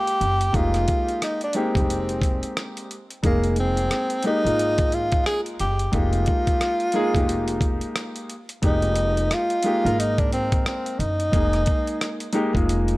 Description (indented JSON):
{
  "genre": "hip hop, jazz-hop",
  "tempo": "89 BPM",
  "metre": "4/4",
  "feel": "swing 60% on 16ths",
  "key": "F minor",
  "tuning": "A4 = 440 Hz",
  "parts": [
    { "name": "breathy tenor saxophone", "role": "melody", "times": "0.0-12.3 s", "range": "Bb3 to Ab4", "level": "-24 LUFS", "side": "equal", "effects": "tape echo" },
    { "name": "warm baby grand piano", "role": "accompaniment", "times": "0.0-13.0 s", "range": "G3 to Bb4", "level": "-26 LUFS", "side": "equal", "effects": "none" },
    { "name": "dusty soul sampler-style drum kit", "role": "drums", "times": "0.1-13.0 s", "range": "hi-hat, kick drum, rim click", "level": "-24 LUFS", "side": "equal", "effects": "none" },
    { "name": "upright bass", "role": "bass", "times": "0.2-13.0 s", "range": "F1 to Ab1", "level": "-25 LUFS", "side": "equal", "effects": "transformer saturation" }
  ],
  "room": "studio reverb",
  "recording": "dry, gritty hardware recording",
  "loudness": "-20 LUFS",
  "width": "side -19 dB against mid",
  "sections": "0.0-8.6 A section; 8.6-13.0 A section",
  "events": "none",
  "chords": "0.0 Fm11"
}